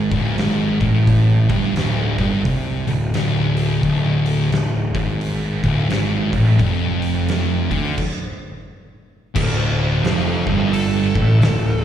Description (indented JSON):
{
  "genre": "stoner and doom metal",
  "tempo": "87 BPM",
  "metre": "4/4",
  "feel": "swing 62% on 8ths",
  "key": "unclear",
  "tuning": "A4 = 440 Hz",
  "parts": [
    { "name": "thick fuzz guitar", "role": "riff", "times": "0.0-11.8 s", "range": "D2 to D3", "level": "-21 LUFS", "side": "left 5 dB", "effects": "distortion" },
    { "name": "thick fuzz guitar", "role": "riff", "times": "0.0-11.8 s", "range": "D2 to D3", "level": "-21 LUFS", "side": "right 6 dB", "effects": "distortion, slapback echo" },
    { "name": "fuzz picked electric bass", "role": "bass", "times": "0.0-11.8 s", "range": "D1 to D2", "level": "-21 LUFS", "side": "equal", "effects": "overdrive" },
    { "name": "oversized low-tuned drum kit", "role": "drums", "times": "0.1-11.6 s", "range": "crash cymbal, hi-hat, kick drum, snare drum", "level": "-25 LUFS", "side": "equal", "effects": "none" },
    { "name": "fuzz lead guitar", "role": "melody", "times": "9.4-11.8 s", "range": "F4 to C5", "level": "-25 LUFS", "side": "left 1 dB", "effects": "distortion, slapback echo, tape echo" }
  ],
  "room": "little or no reverb",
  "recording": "live gig heard through the venue's PA, recital hall reverb",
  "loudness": "-16 LUFS",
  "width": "side -10 dB against mid",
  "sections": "0.0-9.4 A section; 9.4-11.8 B section",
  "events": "stop 8.0-9.4; lead electric guitar solo 9.4-11.8",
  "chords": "0.0 Dm"
}